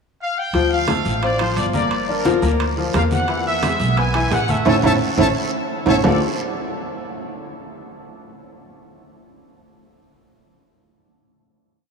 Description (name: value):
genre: latin, salsa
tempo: 174 BPM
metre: 4/4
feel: straight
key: D minor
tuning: A4 = 440 Hz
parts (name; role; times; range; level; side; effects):
- bright trumpet section; melody; 0.2-6.2 s; Bb4 to A5; -23 LUFS; left 1 dB; none
- bright baby grand piano; accompaniment; 0.5-6.2 s; D3 to D5; -22 LUFS; left 3 dB; none
- upright bass; bass; 0.5-6.2 s; G1 to E2; -23 LUFS; right 1 dB; none
- congas; percussion; 0.5-6.1 s; none; -27 LUFS; left 1 dB; none
- guiro; percussion; 0.5-6.1 s; none; -35 LUFS; right 6 dB; none
- timbales; percussion; 0.5-6.1 s; none; -25 LUFS; right 9 dB; none
room: wet cathedral reverb, RT60 5.9 s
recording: in a vast, echoing space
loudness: -16 LUFS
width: side -5 dB against mid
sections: 0.0-0.5 pickup bar; 0.5-6.0 verse; 6.0-7.4 final chord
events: band accent 4.7-6.0; drum fill 5.5-6.0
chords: 0.0 N.C.; 0.5 Dm7; 1.9 Gm7; 3.3 E; 4.7 A; 6.0 Dm7